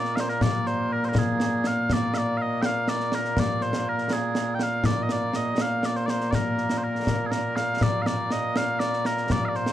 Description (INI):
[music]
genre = scottish traditional, Scottish pipe music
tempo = 81 BPM (dotted quarters)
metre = 6/8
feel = straight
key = Bb mixolydian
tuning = A4 = 442 Hz
[part]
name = mellow small bagpipes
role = melody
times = 0.0-9.7 s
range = Bb2 to G5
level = -25 LUFS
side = equal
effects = none
[part]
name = concert snare drum and concert bass drum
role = drums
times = 0.0-9.7 s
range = none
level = -27 LUFS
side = left 1 dB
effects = none
[sound]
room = little or no reverb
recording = dark, warm production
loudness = -23 LUFS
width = side -12 dB against mid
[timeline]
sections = 0.0-7.8 A section; 7.8-9.7 A section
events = none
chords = none